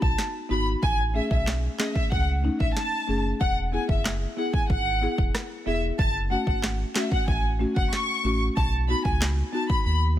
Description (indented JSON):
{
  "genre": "dancehall",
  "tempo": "93 BPM",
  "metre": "4/4",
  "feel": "straight",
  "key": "F# dorian",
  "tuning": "A4 = 441 Hz",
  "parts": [
    { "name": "warm studio violin section", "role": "melody", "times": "0.0-10.0 s", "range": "D#5 to C#6", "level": "-28 LUFS", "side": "left 1 dB", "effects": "tape echo" },
    { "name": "sub bass with octave", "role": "bass", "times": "0.0-10.2 s", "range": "E1 to D#2", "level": "-26 LUFS", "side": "equal", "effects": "none" },
    { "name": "afro-pop drum kit", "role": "drums", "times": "0.0-9.8 s", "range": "handclaps, kick drum, rim click, snare drum", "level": "-26 LUFS", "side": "equal", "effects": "none" },
    { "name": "buzzing marimba with soft mallets", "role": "accompaniment", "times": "0.5-10.2 s", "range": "A3 to G#4", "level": "-30 LUFS", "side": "left 2 dB", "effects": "sidechain pumping" }
  ],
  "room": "small room ambience",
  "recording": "none",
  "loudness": "-22 LUFS",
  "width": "side -12 dB against mid",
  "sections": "0.0-10.2 A section",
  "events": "none",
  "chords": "0.0 B; 0.8 Amaj7; 3.4 E; 6.0 F#m; 8.6 B",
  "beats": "0.18 | 0.83 1.47 2.12 2.76 | 3.41 4.05 4.70 5.34 | 5.99 6.63 7.28 7.92 | 8.57 9.21 9.86"
}